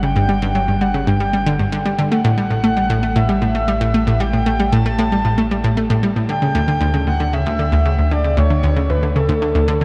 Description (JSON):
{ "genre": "ambient, sequencer-driven space music", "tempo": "115 BPM", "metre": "4/4", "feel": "straight", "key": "unclear", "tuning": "A4 = 444 Hz", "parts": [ { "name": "breathy flute-like synth lead", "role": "melody", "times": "0.0-9.8 s", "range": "A4 to A5", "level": "-24 LUFS", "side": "equal", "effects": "lush chorus, tape echo" }, { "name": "analog pluck", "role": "riff", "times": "0.0-9.8 s", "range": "D2 to A3", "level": "-19 LUFS", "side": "equal", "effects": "chorus, tape echo" }, { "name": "round analog bass", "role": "bass", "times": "0.0-9.8 s", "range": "G1 to D2", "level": "-24 LUFS", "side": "equal", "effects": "tube saturation" } ], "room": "wet huge ambient reverb, RT60 8.2 s", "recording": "dark, warm production", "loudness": "-17 LUFS", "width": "mono", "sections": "0.0-9.8 A section", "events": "none", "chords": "0.0 G5; 2.1 A5; 6.3 Dsus2" }